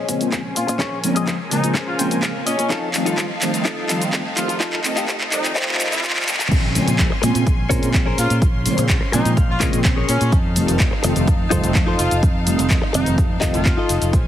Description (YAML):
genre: filtered disco house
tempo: 126 BPM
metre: 4/4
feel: straight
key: Bb dorian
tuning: A4 = 439 Hz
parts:
  - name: rich studio string section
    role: sustained chords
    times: 0.0-14.3 s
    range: Db4 to C6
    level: -29 LUFS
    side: left 1 dB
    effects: sidechain pumping, low-pass filter
  - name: direct-recorded clean electric guitar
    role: riff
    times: 0.0-14.1 s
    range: Db4 to Ab5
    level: -25 LUFS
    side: left 3 dB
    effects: phaser, sidechain pumping, low-pass filter
  - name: fingered electric bass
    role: bass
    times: 0.0-14.3 s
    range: F1 to Bb2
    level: -24 LUFS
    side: equal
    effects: sidechain pumping, high-pass filter, low-pass filter
  - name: mellow synth brass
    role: accompaniment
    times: 0.1-13.7 s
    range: Db3 to C4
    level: -23 LUFS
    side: equal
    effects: chorus, phaser, sidechain pumping, low-pass filter
  - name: electronic kick drum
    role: drums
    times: 0.1-14.2 s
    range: none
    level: -19 LUFS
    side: equal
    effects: high-pass filter on kick
  - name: punchy analog drum machine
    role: drums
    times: 0.1-14.2 s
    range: crash cymbal, handclaps, hi-hat, shaker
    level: -24 LUFS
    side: equal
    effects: sidechain pumping on hats, high-pass filter on hats, high-pass filter on snare, sidechain pumping on perc, high-pass filter on perc, sidechain pumping on cymbals, high-pass filter on cymbals
  - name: bright horn section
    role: melody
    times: 0.6-13.9 s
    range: Db4 to F4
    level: -27 LUFS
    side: left 1 dB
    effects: sidechain pumping, low-pass filter, digital delay
room: moderate lush hall reverb, RT60 2.4 s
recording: heavily compressed radio sound, high-pass filter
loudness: -16 LUFS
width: side -11 dB against mid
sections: 0.0-6.5 A section; 6.5-14.3 B section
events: build-up 0.0-6.5; drum fill 0.0-6.5; filter sweep 0.0-6.5; clean electric guitar fill 1.8-2.7, 8.9-10.3; drop 6.5-14.3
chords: 0.0 Bbm9; 2.7 F7; 6.5 Bbm9; 10.3 F7